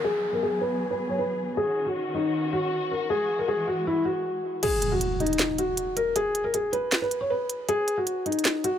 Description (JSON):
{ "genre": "hip hop, trap", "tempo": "157 BPM", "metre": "4/4", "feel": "half-time", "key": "unclear", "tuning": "A4 = 440 Hz", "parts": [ { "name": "felt-muted upright piano", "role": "melody", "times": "0.0-8.8 s", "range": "Eb4 to Db5", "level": "-25 LUFS", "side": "left 1 dB", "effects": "low-pass filter" }, { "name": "dark studio string section", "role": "sustained chords", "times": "0.0-4.6 s", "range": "Eb3 to Ab4", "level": "-32 LUFS", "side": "left 1 dB", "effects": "low-pass filter" }, { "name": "downlifter and impact", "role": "sound effects", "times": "0.0-1.6, 4.6-6.2 s", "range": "none", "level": "-34 LUFS", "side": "right 1 dB", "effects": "none" }, { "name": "trap drum kit", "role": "drums", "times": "4.6-8.7 s", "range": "crash cymbal, handclaps, hi-hat, snare drum", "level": "-27 LUFS", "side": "right 1 dB", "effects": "none" } ], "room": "small room ambience", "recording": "none", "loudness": "-24 LUFS", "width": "side -9 dB against mid", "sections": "0.0-4.6 A section; 4.6-8.8 B section", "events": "filter sweep 0.0-4.6; kick muted 4.6-8.8; impact 4.6-6.2", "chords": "0.0 Abm7; 1.6 Ebm7; 3.1 Eadd9; 4.6 N.C.", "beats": "| 0.04 0.42 0.81 1.19 | 1.57 1.95 2.33 2.72 | 3.10 3.48 3.86 4.25 | 4.63 5.01 5.39 5.78 | 6.16 6.54 6.92 7.30 | 7.69 8.07 8.45" }